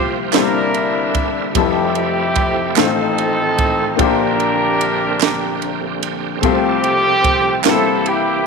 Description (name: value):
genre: slow gospel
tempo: 49 BPM (dotted quarters)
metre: 6/8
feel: straight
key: F major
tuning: A4 = 440 Hz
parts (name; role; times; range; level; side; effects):
- mellow horn section; melody; 0.0-8.5 s; C4 to C5; -17 LUFS; right 1 dB; none
- clear baby grand piano; accompaniment; 0.0-8.5 s; F1 to C5; -19 LUFS; left 13 dB; none
- bright tonewheel organ; sustained chords; 0.0-8.5 s; A2 to A4; -24 LUFS; right 13 dB; slow rotary speaker, chorus vibrato
- crisp fusion drum kit; drums; 0.3-8.2 s; kick drum, ride cymbal, snare drum; -21 LUFS; right 6 dB; none
- group handclap; percussion; 0.3-8.0 s; none; -22 LUFS; right 17 dB; none
room: light reverb, small room ambience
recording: 1960s-style stereo with parts hard left and right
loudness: -14 LUFS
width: side -4 dB against mid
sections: 0.0-8.5 A section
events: none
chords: 0.3 C9; 1.6 Fmaj9; 2.8 F7/A; 4.0 Bb69; 6.4 F/C; 7.6 C7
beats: 0.34 | 1.56 2.77 | 3.99 5.21 | 6.43 7.65